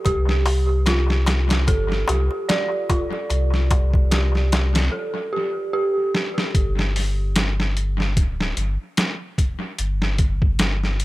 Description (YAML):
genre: trip hop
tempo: 74 BPM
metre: 4/4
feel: swing 57% on 16ths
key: unclear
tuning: A4 = 440 Hz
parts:
  - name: dark detuned synth bell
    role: arpeggios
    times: 0.0-6.6 s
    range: F4 to D5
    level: -24 LUFS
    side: right 2 dB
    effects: chorus, analog delay
  - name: darbuka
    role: percussion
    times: 0.0-4.9 s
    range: none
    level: -31 LUFS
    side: left 2 dB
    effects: analog delay
  - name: warm sub bass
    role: bass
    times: 0.1-11.0 s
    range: D1 to C2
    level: -20 LUFS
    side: equal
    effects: none
  - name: trip hop sampler-style drum kit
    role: drums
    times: 0.1-11.0 s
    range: hi-hat, kick drum, snare drum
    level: -22 LUFS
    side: equal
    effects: analog delay
room: digital ambience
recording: echo-heavy mix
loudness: -18 LUFS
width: side -18 dB against mid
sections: 0.0-6.5 A section; 6.5-11.0 B section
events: break 4.9-6.5; drum fill 6.1-6.5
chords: 0.1 Csus24; 6.5 G5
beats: | 0.06 0.87 1.68 2.49 | 3.30 4.12 4.93 5.74 | 6.55 7.36 8.17 8.98 | 9.79 10.60